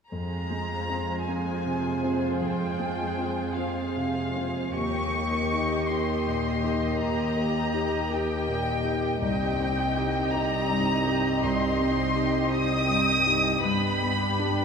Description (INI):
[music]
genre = cinematic, emotional film score for orchestra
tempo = 53 BPM (dotted quarters)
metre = 6/8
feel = rubato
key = F minor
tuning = A4 = 444 Hz
[part]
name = muted chamber violin section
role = melody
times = 0.1-14.6 s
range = F5 to Eb6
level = -29 LUFS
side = left 1 dB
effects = none
[part]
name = muted symphonic violin section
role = second line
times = 0.1-14.6 s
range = G4 to Eb5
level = -33 LUFS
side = left 2 dB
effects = none
[part]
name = muted symphonic viola section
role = accompaniment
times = 0.1-14.6 s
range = Ab3 to G4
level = -32 LUFS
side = right 1 dB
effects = none
[part]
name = warm concert grand piano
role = accompaniment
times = 0.1-14.6 s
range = C2 to G4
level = -29 LUFS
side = left 1 dB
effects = none
[part]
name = muted symphonic cello section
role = bass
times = 0.1-14.6 s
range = C2 to G2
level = -31 LUFS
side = right 3 dB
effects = none
[sound]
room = wet church reverb, RT60 3.3 s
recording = recorded in a church or concert hall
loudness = -24 LUFS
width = side -6 dB against mid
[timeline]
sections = 0.1-14.6 A section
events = none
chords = 0.1 Fm; 4.8 Eb; 9.2 Cm; 13.6 G